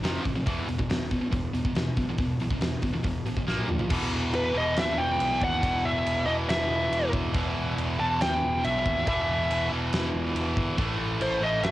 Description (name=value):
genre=heavy metal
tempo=140 BPM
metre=4/4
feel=straight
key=unclear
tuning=A4 = 443 Hz
part: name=high-gain distorted guitar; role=riff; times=0.0-11.7 s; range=E2 to A#3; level=-29 LUFS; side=equal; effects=distortion, cassette tape
part: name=picked electric bass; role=bass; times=0.0-11.7 s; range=E1 to D#2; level=-32 LUFS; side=equal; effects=none
part: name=big rock drum kit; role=drums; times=0.0-11.7 s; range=crash cymbal, hi-hat, kick drum, snare drum, toms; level=-30 LUFS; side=equal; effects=cassette tape
part: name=high-gain lead guitar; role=melody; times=4.3-11.7 s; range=B4 to A5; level=-27 LUFS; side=equal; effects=distortion
room=little or no reverb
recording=home recording on cassette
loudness=-24 LUFS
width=side -15 dB against mid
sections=0.0-3.9 A section; 3.9-11.7 B section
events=drum fill 3.5-3.9; half time 3.9-11.7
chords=0.0 F5; 0.5 E5; 3.5 A#5; 3.9 E5; 10.8 A5